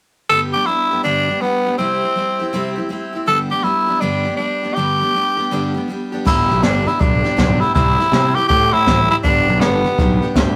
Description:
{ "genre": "rockabilly", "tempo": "161 BPM", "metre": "4/4", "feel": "swing 65% on 8ths", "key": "G major", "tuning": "A4 = 439 Hz", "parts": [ { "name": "raspy tenor saxophone", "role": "melody", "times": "0.3-10.3 s", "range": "B3 to A4", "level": "-19 LUFS", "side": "equal", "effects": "none" }, { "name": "picked steel-string acoustic guitar", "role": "accompaniment", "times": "0.3-10.6 s", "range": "G2 to G4", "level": "-24 LUFS", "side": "equal", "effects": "none" }, { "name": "fuzz picked electric bass", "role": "bass", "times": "6.3-10.6 s", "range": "G1 to C3", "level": "-22 LUFS", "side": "equal", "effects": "overdrive" }, { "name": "jazz brush drum kit", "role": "drums", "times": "6.3-10.5 s", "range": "crash cymbal, hi-hat, kick drum, snare drum", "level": "-21 LUFS", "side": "equal", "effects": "none" } ], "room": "light reverb", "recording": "rough rehearsal-room recording", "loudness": "-17 LUFS", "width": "mono", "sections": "0.3-6.3 A section; 6.3-10.6 B section", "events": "none", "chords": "0.3 G; 1.8 C; 3.3 G; 7.8 C; 9.2 G", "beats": "| 0.29 0.66 1.04 1.41 | 1.78 2.16 2.53 2.90 | 3.28 3.65 4.03 4.40 | 4.77 5.14 5.52 5.89 | 6.26 6.63 7.01 7.38 | 7.75 8.12 8.49 8.87 | 9.24 9.61 9.98 10.36" }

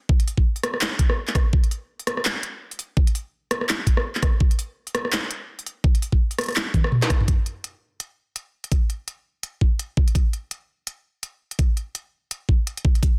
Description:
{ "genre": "drum and bass", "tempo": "167 BPM", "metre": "4/4", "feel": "swing 57% on 16ths, half-time", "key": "none", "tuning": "none", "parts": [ { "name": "electronic kick drum", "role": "drums", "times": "0.1-13.1 s", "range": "none", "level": "-21 LUFS", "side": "equal", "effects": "overdrive" }, { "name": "industrial drum kit", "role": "drums", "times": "0.2-13.1 s", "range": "handclaps, hi-hat, rim click, snare drum, toms", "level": "-27 LUFS", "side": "equal", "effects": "none" } ], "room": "little or no reverb", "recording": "dense, heavily limited modern master", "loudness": "-23 LUFS", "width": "mono", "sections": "0.0-7.3 A section; 7.3-13.2 B section", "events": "drum fill 6.7-7.3", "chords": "none", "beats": "| 0.09 0.45 0.81 1.17 | 1.53 1.89 2.25 2.61 | 2.97 3.33 3.69 4.04 | 4.40 4.76 5.12 5.48 | 5.84 6.20 6.56 6.92 | 7.28 7.64 8.00 8.36 | 8.72 9.07 9.43 9.79 | 10.15 10.51 10.87 11.23 | 11.59 11.95 12.31 12.67 | 13.03" }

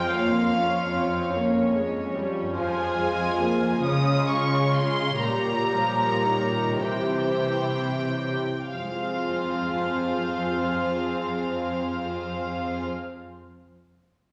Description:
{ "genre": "classical, slow romantic movement for symphony orchestra", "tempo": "28-51 BPM (dotted quarters)", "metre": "6/8", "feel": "rubato", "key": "F minor", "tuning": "A4 = 440 Hz", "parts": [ { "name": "clear studio violin section", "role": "melody", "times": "0.0-12.8 s", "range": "F5 to Eb6", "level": "-32 LUFS", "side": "equal", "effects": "none" }, { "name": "dark studio violin section", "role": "second line", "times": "0.0-12.9 s", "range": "E4 to Eb5", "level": "-33 LUFS", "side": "equal", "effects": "none" }, { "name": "warm studio viola section", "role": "accompaniment", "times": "0.0-12.9 s", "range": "Eb3 to G4", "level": "-30 LUFS", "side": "equal", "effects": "none" }, { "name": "concert harp", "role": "arpeggios", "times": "0.0-13.1 s", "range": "Bb2 to F5", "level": "-38 LUFS", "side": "equal", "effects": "none" }, { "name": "warm studio cello section", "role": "bass", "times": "0.0-12.9 s", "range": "F2 to Db3", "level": "-32 LUFS", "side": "equal", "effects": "none" } ], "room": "wet recital hall reverb, RT60 1.5 s", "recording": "none", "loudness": "-25 LUFS", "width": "mono", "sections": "0.0-8.7 A section; 8.7-12.1 B section", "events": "slowing down 1.4-8.7", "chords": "0.2 Bbm/F; 2.6 Fm; 3.8 Db; 5.2 Gm7b5/Bb; 6.8 C7b9; 8.7 Fm", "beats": "| 0.15 1.35 | 2.57 3.84 | 5.22 6.81 | 8.73 10.47" }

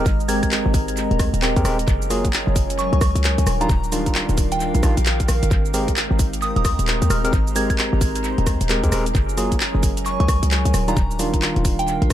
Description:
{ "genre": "UK garage, two-step garage", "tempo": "132 BPM", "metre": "4/4", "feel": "swing 63% on 16ths", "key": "unclear", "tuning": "A4 = 440 Hz", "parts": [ { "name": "soft synth bell", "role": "melody", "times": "0.0-12.1 s", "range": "G5 to Ab6", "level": "-28 LUFS", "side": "right 2 dB", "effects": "chorus, analog delay" }, { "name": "warm analog pad", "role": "sustained chords", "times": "0.0-12.1 s", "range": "Ab3 to C5", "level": "-32 LUFS", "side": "equal", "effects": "chorus, sidechain pumping" }, { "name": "overdriven tine electric piano", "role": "stabs", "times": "0.0-12.1 s", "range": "Eb3 to Bb4", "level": "-25 LUFS", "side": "equal", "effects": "vintage 12-bit sampler grit, tape echo" }, { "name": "short 808-style bass", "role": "bass", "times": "0.0-12.1 s", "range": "Eb1 to Eb2", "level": "-21 LUFS", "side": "equal", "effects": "none" }, { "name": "warbly tape-like pad", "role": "texture", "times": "0.0-12.1 s", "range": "Eb3 to Bb5", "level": "-28 LUFS", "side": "right 1 dB", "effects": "chorus, built-in reverb, sidechain pumping" }, { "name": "electronic kick drum", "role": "drums", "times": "0.1-12.1 s", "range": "none", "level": "-20 LUFS", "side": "equal", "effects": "none" }, { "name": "garage drum kit", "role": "drums", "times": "0.1-12.1 s", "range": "handclaps, hi-hat, rim click, shaker", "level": "-26 LUFS", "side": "equal", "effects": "analog delay" } ], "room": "light reverb, digital ambience", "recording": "echo-heavy mix", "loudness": "-17 LUFS", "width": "side -12 dB against mid", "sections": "0.0-12.1 A section", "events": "none", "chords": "0.0 Abmaj9; 1.9 Gbmaj9; 3.5 Ebmaj9; 5.5 Abmaj9; 9.1 Gbmaj9; 10.7 Ebmaj9", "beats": "| 0.06 0.51 0.97 1.42 | 1.88 2.33 2.79 3.24 | 3.69 4.15 4.60 5.06 | 5.51 5.97 6.42 6.88 | 7.33 7.79 8.24 8.69 | 9.15 9.60 10.06 10.51 | 10.97 11.42 11.88" }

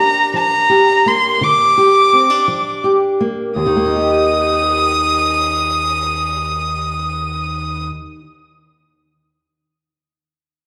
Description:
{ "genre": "folk", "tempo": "56 BPM (dotted quarters)", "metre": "6/8", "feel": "straight", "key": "Eb major", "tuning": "A4 = 440 Hz", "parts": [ { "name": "dark fiddle", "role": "melody", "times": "0.0-7.9 s", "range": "Bb5 to Eb6", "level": "-16 LUFS", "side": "equal", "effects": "slapback echo" }, { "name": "fingerpicked steel-string acoustic guitar", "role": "accompaniment", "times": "0.0-8.3 s", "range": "Eb2 to G4", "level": "-20 LUFS", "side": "equal", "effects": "slapback echo" } ], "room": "light reverb, small room reverb", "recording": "live gig heard through the venue's PA, club reverb", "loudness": "-15 LUFS", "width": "mono", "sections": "0.0-3.6 A section; 3.6-7.9 B section", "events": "none", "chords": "0.0 Bb6; 3.6 Eb", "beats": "0.34 | 1.42 2.50 | 3.57 4.65 | 5.73 6.80" }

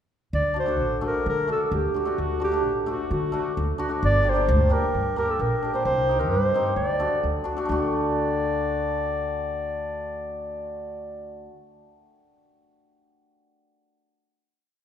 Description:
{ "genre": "klezmer", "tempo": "131 BPM", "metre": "4/4", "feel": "straight", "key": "unclear", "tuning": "A4 = 441 Hz", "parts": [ { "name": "dark clarinet", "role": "melody", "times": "0.3-11.5 s", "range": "F#4 to D5", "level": "-26 LUFS", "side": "equal", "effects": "none" }, { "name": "upright bass", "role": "bass", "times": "0.3-11.5 s", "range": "G1 to D3", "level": "-28 LUFS", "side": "equal", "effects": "none" }, { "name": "hammered dulcimer", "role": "accompaniment", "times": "0.5-12.1 s", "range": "A3 to G4", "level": "-28 LUFS", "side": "equal", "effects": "none" } ], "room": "wet scoring stage reverb, RT60 1.8 s", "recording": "recorded in a church or concert hall", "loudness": "-22 LUFS", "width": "side -9 dB against mid", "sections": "0.3-7.7 A section; 7.7-11.3 final chord", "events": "none", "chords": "0.3 D; 4.0 Gm; 5.9 Cm; 6.8 D", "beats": "| 0.34 0.80 1.26 1.72 | 2.18 2.64 3.10 3.56 | 4.03 4.49 4.95 5.41 | 5.87 6.33 6.79 7.24 | 7.70 8.15 8.61 9.06 | 9.52 9.97 10.42 10.88" }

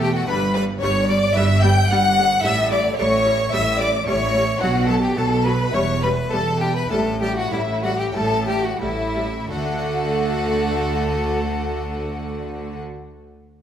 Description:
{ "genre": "classical, baroque-style concerto movement with solo episodes", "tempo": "85-112 BPM", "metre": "4/4", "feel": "straight", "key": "D major", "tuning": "A4 = 440 Hz", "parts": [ { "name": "clear chamber violin section", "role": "melody", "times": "0.0-12.8 s", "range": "E5 to G6", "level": "-28 LUFS", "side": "left 3 dB", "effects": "none" }, { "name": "clear violin", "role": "melody", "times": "0.0-12.8 s", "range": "E4 to G5", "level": "-25 LUFS", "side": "left 2 dB", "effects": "none" }, { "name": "rich chamber violin section", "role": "second line", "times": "0.0-12.8 s", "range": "E4 to G5", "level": "-24 LUFS", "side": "left 1 dB", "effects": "none" }, { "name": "harpsichord", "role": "accompaniment", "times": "0.0-13.1 s", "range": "E2 to D5", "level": "-31 LUFS", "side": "equal", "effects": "none" }, { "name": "rich chamber viola section", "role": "accompaniment", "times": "0.0-12.8 s", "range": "F#3 to A3", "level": "-28 LUFS", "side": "right 2 dB", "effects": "none" }, { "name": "rich studio cello section", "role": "bass", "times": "0.0-12.8 s", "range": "E2 to D3", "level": "-25 LUFS", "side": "right 1 dB", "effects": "none" }, { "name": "rich symphonic double bass section", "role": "bass", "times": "0.0-12.8 s", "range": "E1 to D2", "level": "-26 LUFS", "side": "right 2 dB", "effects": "none" } ], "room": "wet recital hall reverb, RT60 1.6 s", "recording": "none", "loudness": "-18 LUFS", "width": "side -9 dB against mid", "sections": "0.0-9.5 A section; 9.5-13.6 B section", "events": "slowing down 3.5-9.5", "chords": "0.3 G; 1.4 Em/G; 2.4 A7; 4.6 Bm; 5.7 Em; 6.9 A7sus4; 8.1 A7; 9.5 D", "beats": "| 0.29 0.83 1.37 1.91 | 2.45 2.99 3.53 4.07 | 4.62 5.17 5.74 6.31 | 6.91 7.52 8.15 8.81 | 9.51 10.21 10.91 11.61 | 12.31 13.01" }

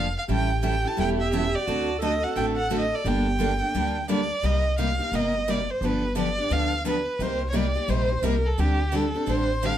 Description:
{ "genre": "acoustic string swing (jazz manouche)", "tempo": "174 BPM", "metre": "4/4", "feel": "swing 61% on 8ths", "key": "G minor", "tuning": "A4 = 441 Hz", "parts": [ { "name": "dark violin", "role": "melody", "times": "0.0-9.8 s", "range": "G4 to A5", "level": "-27 LUFS", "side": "right 1 dB", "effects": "none" }, { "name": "picked steel-string acoustic guitar", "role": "accompaniment", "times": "0.0-9.7 s", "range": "C3 to A4", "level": "-29 LUFS", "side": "left 3 dB", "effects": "none" }, { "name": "picked steel-string acoustic guitar", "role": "accompaniment", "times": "0.0-9.7 s", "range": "C3 to A4", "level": "-32 LUFS", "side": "right 6 dB", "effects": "none" }, { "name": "upright bass", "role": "bass", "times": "0.0-9.8 s", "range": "E1 to D2", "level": "-27 LUFS", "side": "equal", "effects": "none" }, { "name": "warm alto saxophone", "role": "second line", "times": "0.3-3.7 s", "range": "F#4 to A4", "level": "-31 LUFS", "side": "right 5 dB", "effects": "none" } ], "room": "moderate studio reverb, RT60 0.5 s", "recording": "none", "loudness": "-22 LUFS", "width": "side -11 dB against mid", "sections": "0.0-4.4 A section; 4.4-9.8 B section", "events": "none", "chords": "0.3 A7; 1.7 D7; 3.1 Gmadd9; 4.4 Cm7; 5.8 G7; 7.2 Cm7; 8.6 D7sus4", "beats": "| 0.29 0.63 0.98 1.32 | 1.67 2.02 2.36 2.71 | 3.05 3.40 3.74 4.09 | 4.43 4.78 5.13 5.47 | 5.82 6.16 6.51 6.85 | 7.20 7.54 7.89 8.23 | 8.58 8.92 9.27 9.61" }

